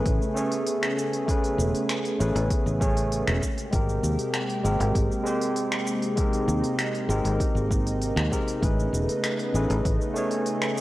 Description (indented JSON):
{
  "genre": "sunset chillout",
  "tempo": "98 BPM",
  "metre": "4/4",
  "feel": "straight",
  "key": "unclear",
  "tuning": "A4 = 435 Hz",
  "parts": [
    { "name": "barky tine electric piano", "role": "accompaniment", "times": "0.0-10.8 s", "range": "G#3 to C#5", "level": "-28 LUFS", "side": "equal", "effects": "overdrive, auto-pan, cassette tape, tape echo" },
    { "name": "lush unison pad", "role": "sustained chords", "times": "0.0-10.8 s", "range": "B#2 to G#4", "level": "-30 LUFS", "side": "equal", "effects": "chorus, cassette tape" },
    { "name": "fingered electric bass", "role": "bass", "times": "0.0-10.0 s", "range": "E1 to D#2", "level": "-26 LUFS", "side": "equal", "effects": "none" },
    { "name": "deep house drum kit", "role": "drums", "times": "0.1-10.8 s", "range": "finger snaps, hi-hat, shaker", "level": "-32 LUFS", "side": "equal", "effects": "cassette tape" },
    { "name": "electronic kick drum", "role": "drums", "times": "0.1-10.0 s", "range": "none", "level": "-26 LUFS", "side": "equal", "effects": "cassette tape" }
  ],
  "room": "moderate lush hall reverb, RT60 1.8 s, digital ambience",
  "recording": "home recording on cassette",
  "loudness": "-23 LUFS",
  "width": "side -16 dB against mid",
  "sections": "0.0-10.8 A section",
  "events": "none",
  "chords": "0.0 Amaj9; 3.4 G#maj9; 8.6 Amaj9"
}